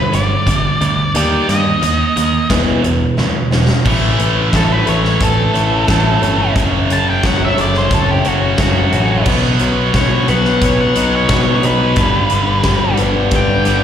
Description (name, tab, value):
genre	quiet-loud alternative rock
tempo	89 BPM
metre	4/4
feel	straight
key	A mixolydian from 3.9 s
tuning	A4 = 440 Hz
part	octave-fuzz lead guitar	melody	0.0-13.8 s	F#4 to A5	-18 LUFS	left 1 dB	distortion, slapback echo
part	fingerpicked swing-style acoustic guitar	arpeggios	0.0-13.8 s	E2 to D#4	-20 LUFS	left 2 dB	slapback echo
part	scooped high-gain guitar	riff	0.0-13.8 s	E2 to D#4	-18 LUFS	right 8 dB	distortion, slapback echo
part	growling picked electric bass	bass	0.1-13.8 s	E1 to G2	-18 LUFS	equal	overdrive
part	huge arena drum kit	drums	0.1-13.8 s	crash cymbal, hi-hat, kick drum, snare drum	-18 LUFS	equal	none
part	distorted electric guitar	riff	3.8-13.8 s	F#2 to B3	-21 LUFS	left 10 dB	overdrive, slapback echo
room	little or no reverb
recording	live gig heard through the venue's PA, recital hall reverb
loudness	-12 LUFS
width	side -9 dB against mid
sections	0.0-3.9 A section; 3.9-13.8 B section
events	half time 0.0-3.9; drum fill 3.2-3.9; lead electric guitar solo 3.9-13.8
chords	0.0 G5; 1.1 D#; 2.5 E5; 3.9 A; 6.6 F#m; 9.3 B; 12.0 G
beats	0.47 | 1.15 1.82 2.50 3.18 | 3.85 4.53 5.21 5.88 | 6.56 7.24 7.91 8.59 | 9.27 9.94 10.62 11.29 | 11.97 12.65 13.32